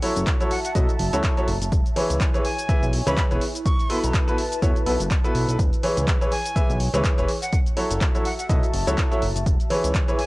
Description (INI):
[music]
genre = piano house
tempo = 124 BPM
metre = 4/4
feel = swing 57% on 16ths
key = E major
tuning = A4 = 439 Hz
[part]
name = clear upright piano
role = riff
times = 0.0-10.2 s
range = E3 to E5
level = -25 LUFS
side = equal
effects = sidechain pumping
[part]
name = punchy analog drum machine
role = drums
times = 0.0-10.3 s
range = handclaps, hi-hat, shaker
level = -31 LUFS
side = equal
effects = none
[part]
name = warbly tape-like pad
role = texture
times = 0.0-10.3 s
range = E4 to A5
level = -32 LUFS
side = equal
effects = chorus, built-in reverb, sidechain pumping
[part]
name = fat analog bass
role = bass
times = 0.2-9.9 s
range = E1 to E2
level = -25 LUFS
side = equal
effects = sidechain pumping
[part]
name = electronic kick drum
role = drums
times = 0.3-10.1 s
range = none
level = -22 LUFS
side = equal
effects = none
[part]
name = breathy bright jazz flute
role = melody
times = 0.5-10.3 s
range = F#5 to C#6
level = -31 LUFS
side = equal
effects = tape echo
[sound]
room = digital ambience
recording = dry, gritty hardware recording, cassette tape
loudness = -19 LUFS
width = side -21 dB against mid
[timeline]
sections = 0.0-10.3 A section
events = none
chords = 0.0 F#m7; 1.7 E6; 3.4 B7sus4; 5.6 E6; 7.5 F#m7; 9.5 E6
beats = 0.27 0.75 1.24 | 1.72 2.20 2.69 3.17 | 3.65 4.14 4.62 5.11 | 5.59 6.07 6.56 7.04 | 7.53 8.01 8.49 8.98 | 9.46 9.95